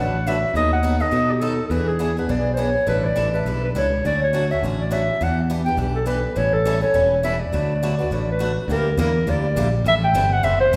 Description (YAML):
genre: acoustic string swing (jazz manouche)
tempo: 206 BPM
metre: 4/4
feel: swing 57% on 8ths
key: D major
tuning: A4 = 441 Hz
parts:
  - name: mellow clarinet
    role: melody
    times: 0.0-10.8 s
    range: G4 to G5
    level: -24 LUFS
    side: equal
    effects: none
  - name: picked swing-style acoustic guitar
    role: accompaniment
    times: 0.0-10.8 s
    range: D3 to B4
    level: -28 LUFS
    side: equal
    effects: none
  - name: modern bright picked electric bass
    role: bass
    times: 0.0-10.8 s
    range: E1 to B2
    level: -25 LUFS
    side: equal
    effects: none
room: wet recital hall reverb, RT60 1.4 s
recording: recorded in a church or concert hall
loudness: -21 LUFS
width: mono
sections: 0.0-8.7 A section; 8.7-10.8 B section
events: none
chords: 0.0 D6; 0.5 B7/D#; 1.7 E7; 2.9 A7sus4; 4.0 Dmaj7; 5.2 Em7; 6.4 A7; 7.5 D6; 8.7 Gm6; 9.8 Am7